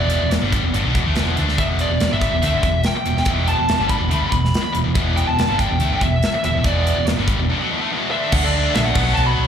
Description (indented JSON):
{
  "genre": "hard rock",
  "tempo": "142 BPM",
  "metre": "4/4",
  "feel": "straight",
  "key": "E minor",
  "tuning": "A4 = 440 Hz",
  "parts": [
    { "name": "high-gain lead guitar", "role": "melody", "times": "0.0-9.5 s", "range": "D5 to B5", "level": "-22 LUFS", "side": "equal", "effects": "distortion, plate reverb, slapback echo, analog delay" },
    { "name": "scooped high-gain guitar", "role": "riff", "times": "0.0-9.5 s", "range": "E2 to D4", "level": "-23 LUFS", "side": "left 11 dB", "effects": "distortion, slapback echo" },
    { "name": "tight distorted guitar", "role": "riff", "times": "0.0-9.5 s", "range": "E2 to D4", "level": "-25 LUFS", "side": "right 12 dB", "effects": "distortion" },
    { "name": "hollow-body short-scale fingered electric bass", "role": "bass", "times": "0.0-9.5 s", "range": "E1 to D2", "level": "-21 LUFS", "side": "equal", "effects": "none" },
    { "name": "tight metal drum kit", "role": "drums", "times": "0.1-9.3 s", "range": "crash cymbal, hi-hat, kick drum, snare drum", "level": "-23 LUFS", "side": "equal", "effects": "none" },
    { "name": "lush unison pad", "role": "sustained chords", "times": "8.3-9.5 s", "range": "B3 to E5", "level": "-31 LUFS", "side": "equal", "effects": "chorus, plate reverb" }
  ],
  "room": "light reverb",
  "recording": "live gig heard through the venue's PA, club reverb",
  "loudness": "-16 LUFS",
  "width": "side -8 dB against mid",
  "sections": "0.0-8.3 A section; 8.3-9.5 B section",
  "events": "break 7.5-8.3",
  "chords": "0.0 Em; 8.3 D5; 9.0 B5"
}